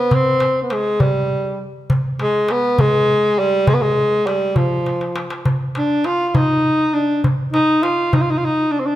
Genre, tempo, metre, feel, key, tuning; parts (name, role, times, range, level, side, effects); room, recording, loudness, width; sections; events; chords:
Arabic maqam ensemble; 67 BPM (dotted quarters); 6/8; straight; G maqam hijaz; A4 = 440 Hz
mellow tenor saxophone; melody; 0.0-9.0 s; F3 to F4; -16 LUFS; equal
darbuka; percussion; 0.1-8.3 s; -20 LUFS; equal
moderate recital hall reverb, RT60 1.5 s; -15 LUFS; side -14 dB against mid
0.0-9.0 A section
drum fill 4.9-5.5